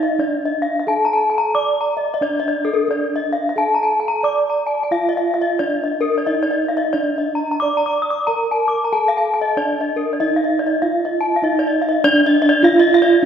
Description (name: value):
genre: gamelan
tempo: 89-100 BPM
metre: 4/4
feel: straight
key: D pelog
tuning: A4 = 440 Hz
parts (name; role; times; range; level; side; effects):
- gamelan-type bronze metallophone; melody; 0.0-13.3 s; D4 to D5; -18 LUFS; right 2 dB; none
- gamelan-type bronze metallophone; arpeggios; 0.0-13.1 s; A4-30c to Eb6+20c; -18 LUFS; left 2 dB; none
room: wet scoring stage reverb, RT60 1.6 s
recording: heard from further back in the room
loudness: -15 LUFS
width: side -8 dB against mid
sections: 0.0-12.0 A section; 12.0-13.3 B section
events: none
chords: none